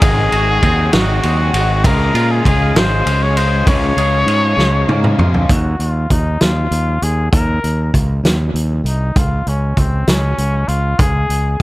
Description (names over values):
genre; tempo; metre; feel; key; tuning
indie rock; 66 BPM (dotted quarters); 6/8; straight; unclear; A4 = 440 Hz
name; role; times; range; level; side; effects
breathy trumpet; melody; 0.0-11.6 s; C4 to Db5; -19 LUFS; left 2 dB; analog delay
sweeping resonant pad; sustained chords; 0.0-5.5 s; Ab4 to Eb6; -31 LUFS; right 1 dB; none
overdriven electric guitar; riff; 0.0-5.5 s; Ab2 to Ab4; -23 LUFS; left 6 dB; spring reverb, analog delay
twangy electric guitar; riff; 0.0-5.5 s; Eb3 to Ab4; -25 LUFS; right 9 dB; ensemble chorus, analog delay
growling fingered electric bass; bass; 0.0-11.6 s; Ab1 to Bb2; -16 LUFS; equal; overdrive
loose indie drum kit; drums; 0.0-11.4 s; hi-hat, kick drum, ride cymbal, snare drum, toms; -16 LUFS; equal; none
room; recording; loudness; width
studio reverb; echo-heavy mix; -12 LUFS; side -18 dB against mid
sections
0.0-5.5 A section; 5.5-11.6 B section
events
drum fill 4.6-5.5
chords
0.0 Ab7; 1.8 Dbmaj7; 3.7 Db6; 5.5 Ebsus2; 9.2 Bbm7/Db (rootless)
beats
| 0.02 0.93 | 1.84 2.76 | 3.67 4.58 | 5.50 6.41 | 7.33 8.24 | 9.16 10.07 | 10.99